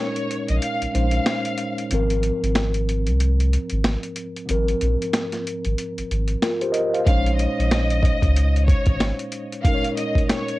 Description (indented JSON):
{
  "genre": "hip hop, boom-bap hip-hop",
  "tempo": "93 BPM",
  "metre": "4/4",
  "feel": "swing 59% on 16ths",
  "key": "Bb minor",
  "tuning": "A4 = 440 Hz",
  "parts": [
    { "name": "rich studio violin section", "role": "melody", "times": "0.0-1.9, 7.1-10.6 s", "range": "Db5 to F5", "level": "-27 LUFS", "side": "equal", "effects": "high-pass filter, low-pass filter, plate reverb, tape echo" },
    { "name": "mellow tine electric piano", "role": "accompaniment", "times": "0.0-10.6 s", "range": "Ab2 to F5", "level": "-25 LUFS", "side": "equal", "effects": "fast stereo tremolo, cassette tape, high-pass filter, low-pass filter, plate reverb" },
    { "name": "boom bap sampler-style drum kit", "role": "drums", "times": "0.2-10.6 s", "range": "hi-hat, kick drum, snare drum", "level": "-22 LUFS", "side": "equal", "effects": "cassette tape" },
    { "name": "soft dub sub bass", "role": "bass", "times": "0.5-9.1 s", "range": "Ab1 to Db2", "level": "-20 LUFS", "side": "equal", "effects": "none" }
  ],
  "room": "light reverb",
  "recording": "home recording on cassette",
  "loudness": "-19 LUFS",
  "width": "side -18 dB against mid",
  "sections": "0.0-10.6 A section",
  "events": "break 0.0-7.1",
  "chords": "0.0 Bbm11; 1.9 Ab69; 7.1 Bbm11"
}